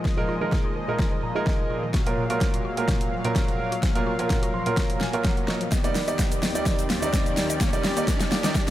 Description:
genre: dance-pop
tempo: 127 BPM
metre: 4/4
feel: straight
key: unclear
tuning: A4 = 440 Hz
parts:
  - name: soft supersaw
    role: sustained chords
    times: 0.0-8.7 s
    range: Eb2 to F5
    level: -30 LUFS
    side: left 1 dB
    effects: sidechain pumping
  - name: mallet-like synth pluck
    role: arpeggios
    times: 0.0-8.7 s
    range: Bb2 to Eb5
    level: -34 LUFS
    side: left 3 dB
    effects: chorus, sidechain pumping, tape echo
  - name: riser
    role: sound effects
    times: 2.8-8.7 s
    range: none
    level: -37 LUFS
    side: left 1 dB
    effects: none
  - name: deep house drum kit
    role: drums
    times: 0.1-8.7 s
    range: hi-hat, kick drum, shaker, snare drum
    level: -24 LUFS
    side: equal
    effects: overdrive
  - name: clear concert grand piano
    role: accompaniment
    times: 0.2-8.7 s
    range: Bb2 to C6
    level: -28 LUFS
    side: right 3 dB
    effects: sidechain pumping
  - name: tube shaker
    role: percussion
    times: 5.7-8.7 s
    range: none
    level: -44 LUFS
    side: left 10 dB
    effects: none
room: light reverb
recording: none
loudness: -22 LUFS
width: side -13 dB against mid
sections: 0.0-8.7 A section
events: build-up 0.0-8.7; drum fill 0.0-8.7; grand piano fill 1.0-1.9, 4.3-5.7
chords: 0.0 Bb7sus4; 1.9 Gbmaj7/Bb; 5.7 Ebmaj7

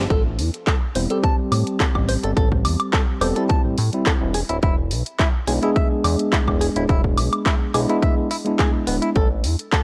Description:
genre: nu-disco, nu disco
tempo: 106 BPM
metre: 4/4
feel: swing 53% on 16ths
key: A minor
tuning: A4 = 439 Hz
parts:
  - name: direct-recorded clean electric guitar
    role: riff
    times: 0.0-9.8 s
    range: B3 to A5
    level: -30 LUFS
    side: equal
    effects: subtle chorus, analog delay
  - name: chorused synth bass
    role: bass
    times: 0.0-9.6 s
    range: D1 to A2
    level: -25 LUFS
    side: equal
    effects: none
  - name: electronic kick drum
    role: drums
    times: 0.1-9.8 s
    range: none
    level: -22 LUFS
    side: equal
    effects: overdrive
  - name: house drum kit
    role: drums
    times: 0.1-9.8 s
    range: handclaps, hi-hat, woodblock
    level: -28 LUFS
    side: equal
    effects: overdrive
  - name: tine electric piano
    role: accompaniment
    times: 0.9-9.1 s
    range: G3 to A4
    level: -26 LUFS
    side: equal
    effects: medium tremolo, sidechain pumping, analog delay
room: little or no reverb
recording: dry, gritty hardware recording, cassette tape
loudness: -20 LUFS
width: mono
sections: 0.1-9.8 A section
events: band accent 0.0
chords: 0.1 Am7; 4.3 E7; 9.2 A5

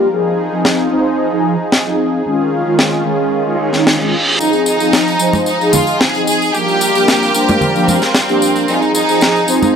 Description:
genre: nu-disco, nu disco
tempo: 112 BPM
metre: 4/4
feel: straight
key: F minor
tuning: A4 = 440 Hz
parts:
  - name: mellow synth brass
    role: accompaniment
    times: 0.0-9.8 s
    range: Eb3 to C5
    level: -15 LUFS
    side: equal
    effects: chorus, phaser
  - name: lush unison pad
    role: sustained chords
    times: 0.0-9.8 s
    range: Eb3 to Bb4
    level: -20 LUFS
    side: equal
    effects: chorus, vintage 12-bit sampler grit
  - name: snare drum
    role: drums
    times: 0.7-9.3 s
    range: none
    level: -14 LUFS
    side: equal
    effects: none
  - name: reverse cymbal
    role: sound effects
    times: 3.6-4.4 s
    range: none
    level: -18 LUFS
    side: right 1 dB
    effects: none
  - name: clear studio violin section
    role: melody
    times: 4.4-9.7 s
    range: C4 to Ab4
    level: -16 LUFS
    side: equal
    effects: analog delay
  - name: tambourine and congas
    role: percussion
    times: 4.4-9.7 s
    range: none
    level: -20 LUFS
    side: equal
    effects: none
room: light reverb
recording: dry, gritty hardware recording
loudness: -11 LUFS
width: side -7 dB against mid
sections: 0.0-9.8 A section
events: filter sweep on analog polysynth 0.0-9.8; reverse cymbal 3.6-4.4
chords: 0.1 Fm7; 2.3 Eb9sus4; 4.4 Fm7; 6.5 Gm7; 8.7 Fm7

